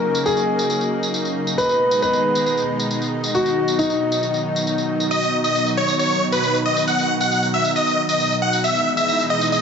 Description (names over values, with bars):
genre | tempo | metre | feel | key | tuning
uplifting trance | 136 BPM | 4/4 | straight | B major | A4 = 441 Hz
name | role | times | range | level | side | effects
warm concert grand piano | second line | 0.0-5.0 s | D#4 to B4 | -20 LUFS | left 1 dB | digital delay
lush unison pad | sustained chords | 0.0-9.6 s | B2 to D#4 | -22 LUFS | equal | chorus
tambourine | drums | 0.1-9.6 s | none | -27 LUFS | equal | none
big supersaw lead | melody | 5.1-9.6 s | B4 to F#5 | -18 LUFS | equal | dub echo
room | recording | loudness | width
wet lush hall reverb, RT60 2.0 s | nothing above 7.7 kHz | -17 LUFS | side -6 dB against mid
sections
0.0-9.6 A section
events
none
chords
0.0 F#6; 1.6 G#m; 5.1 B; 8.6 Emaj7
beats
0.26 0.70 1.14 | 1.58 2.02 2.46 2.90 | 3.35 3.79 4.23 4.67 | 5.11 5.55 5.99 6.43 | 6.88 7.32 7.76 8.20 | 8.64 9.08 9.52